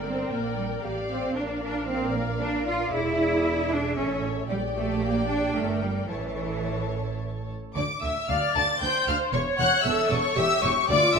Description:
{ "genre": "quick classical-period movement for string orchestra", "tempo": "115 BPM", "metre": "3/4", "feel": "straight", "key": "D minor", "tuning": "A4 = 439 Hz", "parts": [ { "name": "rich studio violin section", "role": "melody", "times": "0.0-11.2 s", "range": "E5 to A6", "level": "-29 LUFS", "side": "left 4 dB", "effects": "none" }, { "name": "warm symphonic violin section", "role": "second line", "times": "0.0-11.2 s", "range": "C#5 to A5", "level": "-30 LUFS", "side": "left 3 dB", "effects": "none" }, { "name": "warm symphonic viola section", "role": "accompaniment", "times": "0.0-11.2 s", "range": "F4 to D5", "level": "-30 LUFS", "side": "equal", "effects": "none" }, { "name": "rich symphonic cello section", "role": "bass", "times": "0.0-11.2 s", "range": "D2 to F4", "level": "-29 LUFS", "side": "right 2 dB", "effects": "none" }, { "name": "warm symphonic double bass section", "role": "bass", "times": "0.0-11.2 s", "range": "E1 to D2", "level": "-32 LUFS", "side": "right 4 dB", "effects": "none" } ], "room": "wet recital hall reverb, RT60 1.6 s", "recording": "minimal, uncompressed stereo recording", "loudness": "-23 LUFS", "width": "side -5 dB against mid", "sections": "0.0-7.8 A section; 7.8-11.2 B section", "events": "none", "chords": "0.0 Gm; 1.4 Bb; 2.9 E7; 4.0 A; 4.5 Gm/Bb; 5.6 Gm; 6.1 A; 7.8 Dm11; 9.3 C#dim/E", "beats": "0.32 0.84 | 1.36 1.89 2.41 | 2.93 3.45 3.97 | 4.50 5.02 5.55 | 6.10 6.66 7.21 | 7.75 8.29 8.81 | 9.34 9.85 10.38 | 10.89" }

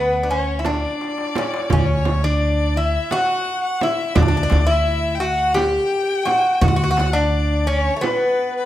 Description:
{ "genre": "Turkish makam ensemble", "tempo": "171 BPM (eighths)", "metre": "7/8", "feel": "straight", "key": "D makam rast", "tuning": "A4 = 442 Hz", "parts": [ { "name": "Greek bouzouki", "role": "melody", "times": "0.0-8.7 s", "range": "A3 to G4", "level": "-20 LUFS", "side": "equal", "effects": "none" }, { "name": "rich violin", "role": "second line", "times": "0.0-8.7 s", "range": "B4 to G5", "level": "-25 LUFS", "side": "left 6 dB", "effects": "none" }, { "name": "upright bass", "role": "bass", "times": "0.0-7.9 s", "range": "D2", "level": "-20 LUFS", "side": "equal", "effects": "none" }, { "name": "darbuka", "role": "percussion", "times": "0.3-8.5 s", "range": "none", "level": "-24 LUFS", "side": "right 1 dB", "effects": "none" }, { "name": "frame drum", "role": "percussion", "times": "0.6-8.2 s", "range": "none", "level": "-26 LUFS", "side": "right 4 dB", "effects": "none" } ], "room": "moderate recital hall reverb, RT60 1.5 s", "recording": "close, detailed microphones", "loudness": "-17 LUFS", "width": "side -13 dB against mid", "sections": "0.0-8.7 A section", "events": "drum fill 1.0-1.7", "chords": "none", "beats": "0.29 0.65 1.00 1.35 | 1.70 2.05 2.40 2.76 3.11 3.46 3.81 | 4.16 4.51 4.87 5.22 5.57 5.92 6.27 | 6.62 6.97 7.33 7.68 8.03 8.38" }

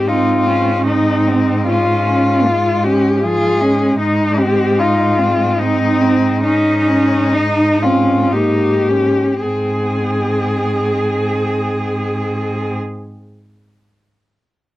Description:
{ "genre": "classical, lyrical piece for cello ensemble", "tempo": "52-80 BPM", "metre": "3/4", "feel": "rubato", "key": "Ab major", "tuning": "A4 = 439 Hz", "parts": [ { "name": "rich cello", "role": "melody", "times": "0.0-12.8 s", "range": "Eb4 to Ab4", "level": "-17 LUFS", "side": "left 3 dB", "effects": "none" }, { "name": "rich cello", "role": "accompaniment", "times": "0.0-12.8 s", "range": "C4 to F4", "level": "-19 LUFS", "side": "equal", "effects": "none" }, { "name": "clear cello", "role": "bass", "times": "0.0-12.7 s", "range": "Ab2", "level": "-20 LUFS", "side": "equal", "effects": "none" }, { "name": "rich cello", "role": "second line", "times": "0.1-12.8 s", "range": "F3 to Ab4", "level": "-20 LUFS", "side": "right 4 dB", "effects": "none" } ], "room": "moderate small room reverb, RT60 0.6 s", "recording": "worn, warbling old tape, cassette tape, warbly pitch drift", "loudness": "-13 LUFS", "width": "side -15 dB against mid", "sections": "0.0-9.4 A section; 9.4-12.6 B section", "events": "slowing down 2.8-9.4", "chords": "0.0 Ab; 1.7 Db/Ab; 4.0 Ab; 6.4 Eb7/Ab; 9.4 Ab", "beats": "0.08 0.88 | 1.69 2.46 3.22 | 4.00 4.78 5.59 | 6.44 7.34 8.34 | 9.44 10.48 11.54" }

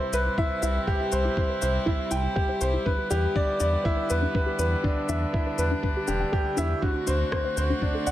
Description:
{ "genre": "piano and strings electronica", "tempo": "121 BPM", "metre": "4/4", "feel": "straight", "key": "E minor", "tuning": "A4 = 440 Hz", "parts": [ { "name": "rich string quartet", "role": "sustained chords", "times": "0.0-8.1 s", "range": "C3 to F#4", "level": "-33 LUFS", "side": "right 1 dB", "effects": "none" }, { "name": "soft round pluck", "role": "arpeggios", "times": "0.0-8.1 s", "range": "D4 to G5", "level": "-34 LUFS", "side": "left 2 dB", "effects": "analog chorus, sidechain pumping, tape echo" }, { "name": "clear baby grand piano", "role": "riff", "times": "0.0-8.1 s", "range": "D4 to G5", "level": "-27 LUFS", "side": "equal", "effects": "tape echo" }, { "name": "round analog bass", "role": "bass", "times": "0.1-8.1 s", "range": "E1 to E2", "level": "-26 LUFS", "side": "equal", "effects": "sidechain pumping" }, { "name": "electronic shaker and rim click", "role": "drums", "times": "0.1-8.1 s", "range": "none", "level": "-35 LUFS", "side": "left 4 dB", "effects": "overdrive" }, { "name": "electronic kick drum", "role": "drums", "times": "0.4-7.9 s", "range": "none", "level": "-27 LUFS", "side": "equal", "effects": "none" } ], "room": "light reverb", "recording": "none", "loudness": "-23 LUFS", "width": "side -13 dB against mid", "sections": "0.0-8.1 A section", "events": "filter sweep on synth arpeggio sound 0.0-8.1", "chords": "0.0 Cmaj7; 2.9 Em7; 6.8 D7", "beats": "0.38 | 0.88 1.37 1.87 2.36 | 2.86 3.36 3.85 4.35 | 4.84 5.34 5.83 6.33 | 6.83 7.32 7.82" }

